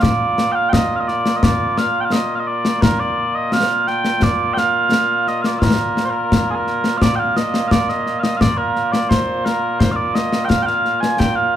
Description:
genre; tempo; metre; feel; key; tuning
scottish traditional, Scottish pipe music; 86 BPM; 2/4; straight; Bb major; A4 = 444 Hz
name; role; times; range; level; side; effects
mellow small bagpipes; melody; 0.0-11.6 s; Bb2 to Ab5; -17 LUFS; right 1 dB; none
concert snare drum and concert bass drum; drums; 0.0-11.4 s; none; -18 LUFS; left 2 dB; none
room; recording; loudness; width
moderate large studio reverb, RT60 1.3 s; band playing live in one room; -15 LUFS; side -10 dB against mid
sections
0.0-7.0 A section; 7.0-11.6 B section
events
none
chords
none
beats
| 0.03 0.73 | 1.43 2.13 | 2.83 3.52 | 4.22 4.92 | 5.62 6.31 | 7.01 7.71 | 8.41 9.10 | 9.80 10.50 | 11.20

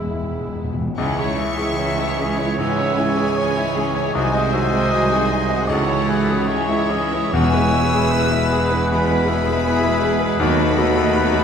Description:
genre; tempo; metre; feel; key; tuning
classical, romantic movement for piano and orchestra; 76 BPM; 4/4; uneven beats, rubato; C# minor; A4 = 440 Hz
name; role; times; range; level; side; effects
clear concert grand piano; melody; 0.0-11.4 s; B#1 to E5; -22 LUFS; left 2 dB; none
warm symphonic violin section; melody; 0.0-11.4 s; B4 to E6; -29 LUFS; left 3 dB; none
clear symphonic violin section; second line; 0.0-11.4 s; C#4 to C#5; -29 LUFS; left 4 dB; none
hollow concert flute; second line; 0.0-11.4 s; G#4 to B5; -28 LUFS; left 1 dB; none
warm oboe; second line; 0.0-11.4 s; F#4 to E5; -27 LUFS; right 1 dB; none
mellow bassoon; accompaniment; 0.0-0.6 s; G#3; -34 LUFS; right 3 dB; none
warm studio viola section; accompaniment; 0.0-11.4 s; E3 to E4; -27 LUFS; right 2 dB; none
dark French horn section; sustained chords; 0.0-11.4 s; G#3 to G#4; -29 LUFS; left 3 dB; none
rich symphonic cello section; bass; 0.0-11.4 s; B#1 to E2; -27 LUFS; right 3 dB; none
warm studio double bass section; bass; 0.0-11.4 s; E1 to D#2; -28 LUFS; right 3 dB; none
timpani; percussion; 0.0-0.9, 7.3-8.5 s; E2; -27 LUFS; equal; none
bright trombone section; sustained chords; 1.0-11.4 s; G#2 to A3; -28 LUFS; right 4 dB; none
clear trumpet section; stabs; 1.0-11.4 s; B4 to D#5; -28 LUFS; right 2 dB; none
room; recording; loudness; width
wet concert hall reverb, RT60 2.1 s; minimal, uncompressed stereo recording; -16 LUFS; side -7 dB against mid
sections
1.0-11.4 A section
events
timpani fill 0.0-1.0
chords
0.0 E; 1.0 C#m; 4.2 G#7/B#; 5.7 C#m; 7.3 E; 10.4 B7/D#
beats
0.10 | 0.98 1.78 2.58 3.37 | 4.15 4.92 5.69 6.48 | 7.33 8.11 8.89 9.65 | 10.40 11.16

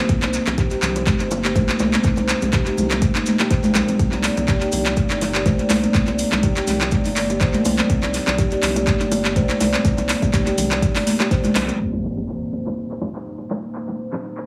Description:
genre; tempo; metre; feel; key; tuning
afro house; 123 BPM; 4/4; swing 55% on 16ths; C minor; A4 = 435 Hz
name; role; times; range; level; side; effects
dark analog pad; sustained chords; 0.0-14.5 s; Bb3 to D5; -29 LUFS; equal; lush chorus, sidechain pumping
buzzing kalimba; arpeggios; 0.0-11.8 s; G3 to C5; -27 LUFS; equal; sidechain pumping, tape echo
round analog bass; bass; 0.1-11.7 s; G1 to C2; -30 LUFS; equal; tube saturation, sidechain pumping
afro-pop drum kit; drums; 0.1-14.5 s; handclaps, hi-hat; -27 LUFS; equal; overdrive, low-pass filter on hats, low-pass filter on snare, tape echo
electronic kick drum; drums; 0.1-11.4 s; none; -22 LUFS; equal; overdrive
maracas; percussion; 0.1-11.8 s; none; -36 LUFS; equal; none
bongos; percussion; 0.2-14.2 s; none; -33 LUFS; equal; none
congas; percussion; 0.8-11.7 s; none; -27 LUFS; equal; tape echo
impact; sound effects; 11.8-13.8 s; none; -35 LUFS; equal; none
room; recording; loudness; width
moderate spring reverb, RT60 1.2 s, studio reverb; echo-heavy mix, low-pass filter, studio ambience; -20 LUFS; mono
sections
0.0-11.8 A section; 11.8-14.5 B section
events
band accent 11.6; impact 11.8-13.8; filter sweep on drum 11.8-14.5; filter sweep 11.8-14.5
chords
0.0 Cm7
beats
| 0.09 0.58 1.07 1.55 | 2.04 2.53 3.02 3.51 | 3.99 4.48 4.97 5.46 | 5.95 6.43 6.92 7.41 | 7.90 8.38 8.87 9.36 | 9.85 10.34 10.82 11.31 | 11.80 12.29 12.78 13.26 | 13.75 14.24

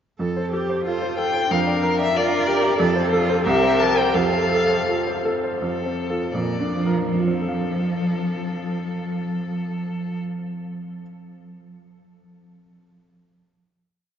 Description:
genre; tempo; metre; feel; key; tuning
quick classical-period movement for piano quartet; 75-95 BPM; 2/4; rubato; F major; A4 = 441 Hz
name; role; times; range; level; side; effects
warm cello; second line; 0.2-10.2 s; Bb2 to A4; -25 LUFS; right 2 dB; none
bright baby grand piano; accompaniment; 0.2-11.0 s; C2 to F5; -24 LUFS; equal; none
rich viola; accompaniment; 0.2-5.4 s; G4 to Bb4; -27 LUFS; right 1 dB; none
warm violin; melody; 0.9-10.2 s; A4 to A5; -26 LUFS; left 5 dB; none
room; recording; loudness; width
wet cathedral reverb, RT60 5.4 s; in a vast, echoing space, nothing above 7.5 kHz; -19 LUFS; side -8 dB against mid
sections
0.2-5.6 A section; 5.6-7.1 coda; 7.1-10.2 final chord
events
slowing down 3.5-7.1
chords
0.2 F; 1.5 Bb/F; 2.8 F; 3.5 C7; 4.2 F; 6.3 Bb/F; 7.1 F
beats
| 0.21 0.87 | 1.51 2.16 | 2.80 3.46 | 4.15 4.87 | 5.61 6.34 | 7.12 7.90 | 8.67 9.44

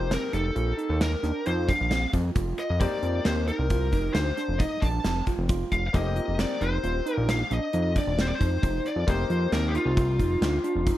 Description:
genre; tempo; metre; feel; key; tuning
progressive instrumental, band music in an uneven meter; 134 BPM; 7/4; straight; unclear; A4 = 440 Hz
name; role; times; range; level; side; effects
lead guitar through a small cranked amp; melody; 0.0-11.0 s; F4 to A5; -29 LUFS; left 2 dB; overdrive
bright grand piano; accompaniment; 0.0-11.0 s; Bb3 to G4; -38 LUFS; left 6 dB; none
tine electric piano; arpeggios; 0.0-11.0 s; C4 to G4; -33 LUFS; right 6 dB; medium stereo tremolo
fat analog bass; bass; 0.0-10.9 s; Eb1 to F2; -27 LUFS; equal; none
gated 80s drum kit; drums; 0.1-11.0 s; hi-hat, kick drum, snare drum; -28 LUFS; equal; none
room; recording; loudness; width
little or no reverb; none; -23 LUFS; side -14 dB against mid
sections
0.0-11.0 A section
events
none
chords
0.0 F7sus4; 5.9 Cm9; 9.1 F7sus4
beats
0.12 0.56 1.01 1.46 1.91 2.36 | 2.81 3.25 3.70 4.15 4.60 5.05 5.50 | 5.95 6.39 6.84 7.29 7.74 8.18 8.63 | 9.08 9.53 9.97 10.42 10.87

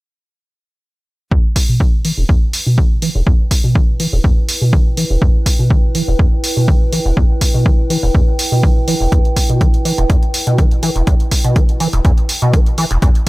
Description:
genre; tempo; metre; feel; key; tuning
acid house; 123 BPM; 4/4; straight; E minor; A4 = 440 Hz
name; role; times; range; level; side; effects
deep acid bass; riff; 1.3-13.1 s; E1 to E3; -16 LUFS; equal; overdrive, ensemble chorus
electronic kick drum; drums; 1.3-13.3 s; none; -12 LUFS; equal; none
warbly tape-like pad; texture; 1.3-13.3 s; E4 to G5; -24 LUFS; right 1 dB; chorus, built-in reverb, sidechain pumping
electronic hi-hat; drums; 1.6-13.3 s; none; -21 LUFS; right 1 dB; none
room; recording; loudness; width
little or no reverb; none; -11 LUFS; side -20 dB against mid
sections
1.3-13.3 A section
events
fade-in on ambient pad 1.3-13.3; filter sweep on acid bass 1.3-13.3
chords
1.3 Em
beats
| 1.32 1.80 2.29 2.78 | 3.27 3.75 4.24 4.73 | 5.22 5.71 6.19 6.68 | 7.17 7.66 8.14 8.63 | 9.12 9.61 10.10 10.58 | 11.07 11.56 12.05 12.54 | 13.02

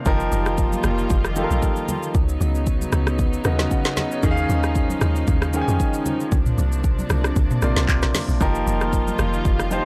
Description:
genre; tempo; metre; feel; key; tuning
amapiano; 115 BPM; 4/4; swing 55% on 16ths; F minor; A4 = 440 Hz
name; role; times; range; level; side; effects
warm concert grand piano; accompaniment; 0.0-9.8 s; C3 to Ab5; -27 LUFS; equal; none
warm studio string section; sustained chords; 0.0-9.8 s; C3 to F4; -30 LUFS; equal; sidechain pumping
deep log drum bass; bass; 0.1-9.8 s; F1 to F2; -25 LUFS; equal; none
afro-pop drum kit; drums; 0.1-9.8 s; handclaps, hi-hat, kick drum, rim click, shaker, snare drum, toms; -25 LUFS; equal; none
congas; percussion; 0.1-9.8 s; none; -36 LUFS; equal; none
room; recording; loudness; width
small room ambience; dry, gritty hardware recording, transformer saturation; -21 LUFS; mono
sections
0.1-9.8 A section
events
drop 0.1-9.8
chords
0.1 F9sus4; 2.1 Db9sus4; 4.2 Eb9sus4; 6.3 C9sus4; 8.4 F9sus4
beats
| 0.06 0.58 1.10 1.62 | 2.15 2.67 3.19 3.71 | 4.23 4.75 5.28 5.80 | 6.32 6.84 7.36 7.89 | 8.41 8.93 9.45

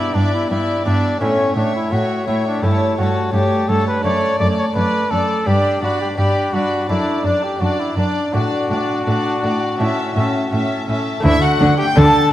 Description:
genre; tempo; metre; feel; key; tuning
classical, baroque-style concerto movement with solo episodes; 84 BPM; 4/4; straight; D major; A4 = 440 Hz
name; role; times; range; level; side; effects
warm chamber violin section; melody; 0.0-12.3 s; E5 to B5; -25 LUFS; left 1 dB; none
warm trumpet; melody; 0.0-12.3 s; C#4 to D5; -21 LUFS; left 1 dB; none
warm studio violin section; second line; 0.0-12.0 s; D4 to E5; -23 LUFS; left 2 dB; none
lute; accompaniment; 0.0-12.3 s; F#2 to F#4; -26 LUFS; equal; none
warm chamber viola section; accompaniment; 0.0-12.0 s; A3 to D4; -24 LUFS; right 1 dB; none
warm chamber cello section; bass; 0.1-12.0 s; F#2 to D3; -20 LUFS; right 1 dB; none
dark studio double bass section; bass; 11.2-12.0 s; D2; -20 LUFS; right 1 dB; none
room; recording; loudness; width
wet concert hall reverb, RT60 2.0 s; vinyl crackle; -15 LUFS; side -13 dB against mid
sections
0.0-11.2 A section; 11.2-12.3 B section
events
none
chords
0.0 Em7/G; 1.2 A; 2.6 A7/G; 4.0 D/F#; 5.5 G; 6.9 D/F#; 8.3 D/A; 9.8 A; 11.2 D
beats
0.50 1.21 1.92 | 2.63 3.34 4.04 4.75 | 5.46 6.18 6.89 7.61 | 8.34 9.06 9.79 10.52 | 11.24 11.96

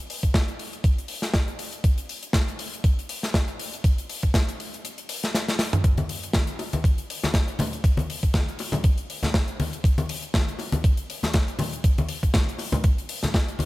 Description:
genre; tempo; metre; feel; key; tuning
nu-disco; 120 BPM; 4/4; swing 56% on 16ths; none; none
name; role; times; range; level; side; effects
tight metal drum kit; drums; 0.1-13.7 s; hi-hat, snare drum, toms; -28 LUFS; left 1 dB; none
electronic kick drum; drums; 0.2-13.5 s; none; -21 LUFS; equal; none
congas and bongos; percussion; 6.0-13.7 s; none; -28 LUFS; left 1 dB; none
room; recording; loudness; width
small room reverb; none; -22 LUFS; side -18 dB against mid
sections
0.0-13.7 A section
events
kick drops out 4.8-5.8; drum fill 5.3-5.8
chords
none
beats
0.34 0.84 1.34 | 1.84 2.34 2.84 3.34 | 3.84 4.34 4.84 5.34 | 5.84 6.34 6.84 7.34 | 7.84 8.34 8.84 9.34 | 9.84 10.34 10.84 11.34 | 11.84 12.34 12.84 13.34

